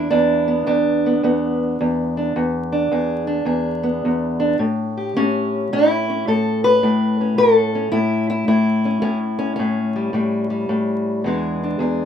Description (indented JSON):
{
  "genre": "acoustic country blues, solo or duo",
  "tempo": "108 BPM",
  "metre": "4/4",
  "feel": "swing 66% on 8ths",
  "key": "unclear",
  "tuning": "A4 = 439 Hz",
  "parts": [
    { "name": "fingerpicked steel-string acoustic guitar", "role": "solo", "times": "0.0-12.1 s", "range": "E2 to B4", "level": "-17 LUFS", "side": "equal", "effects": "none" }
  ],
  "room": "moderate studio ambience, RT60 0.5 s",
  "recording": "minimal, uncompressed stereo recording, vinyl crackle",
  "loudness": "-17 LUFS",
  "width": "side -8 dB against mid",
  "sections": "0.0-12.1 A section",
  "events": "none",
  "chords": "0.0 E7; 4.6 A7; 11.2 E7"
}